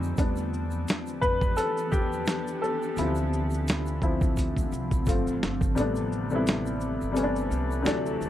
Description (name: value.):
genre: lo-fi hip hop.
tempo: 86 BPM.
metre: 4/4.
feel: swing 56% on 16ths.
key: A minor.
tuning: A4 = 439 Hz.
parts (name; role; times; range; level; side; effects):
felt-muted upright piano; accompaniment; 0.0-8.3 s; C3 to C5; -28 LUFS; left 2 dB; cassette tape, low-pass filter, plate reverb.
granular cloud pad; sustained chords; 0.0-8.3 s; D3 to D5; -33 LUFS; equal; built-in reverb, low-pass filter, plate reverb.
upright bass; bass; 0.0-8.3 s; G1 to F2; -32 LUFS; equal; none.
egg shaker; percussion; 0.0-8.3 s; none; -51 LUFS; right 7 dB; none.
dusty soul sampler-style drum kit; drums; 0.2-8.3 s; hi-hat, kick drum, shaker, snare drum; -27 LUFS; equal; none.
room: light reverb.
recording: cassette tape.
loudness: -25 LUFS.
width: side -12 dB against mid.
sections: 0.0-5.8 A section; 5.8-8.3 B section.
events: felt piano solo 0.0-5.8; drum fill 4.4-5.8; kick muted 5.8-8.3.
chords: 0.2 Em7; 3.0 Dm7; 5.1 G9sus4; 5.8 Am11.